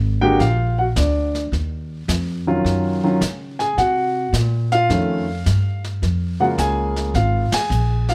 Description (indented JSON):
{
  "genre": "jazz piano trio",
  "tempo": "107 BPM",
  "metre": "4/4",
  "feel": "swing 67% on 8ths",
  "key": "unclear",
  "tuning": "A4 = 441 Hz",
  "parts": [
    { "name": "upright bass", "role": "bass", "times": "0.0-8.1 s", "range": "Ab1 to C#3", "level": "-23 LUFS", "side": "equal", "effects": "none" },
    { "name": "warm concert grand piano", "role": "melody", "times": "0.2-8.1 s", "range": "C#3 to G#5", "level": "-22 LUFS", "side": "equal", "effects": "none" },
    { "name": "jazz brush drum kit", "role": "drums", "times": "0.4-8.1 s", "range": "brushed snare drum, hi-hat, ride cymbal, snare drum", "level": "-31 LUFS", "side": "equal", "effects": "none" }
  ],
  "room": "light reverb",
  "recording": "none",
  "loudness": "-20 LUFS",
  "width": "mono",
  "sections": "0.0-8.1 A section",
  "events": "band accent 7.4",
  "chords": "0.4 A#; 1.5 D#m9; 3.8 F#maj7#11; 4.9 F7b13; 6.0 A#m7",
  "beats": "0.40 0.97 | 1.53 2.09 2.65 3.21 | 3.78 4.34 4.90 5.46 | 6.03 6.59 7.15 7.71"
}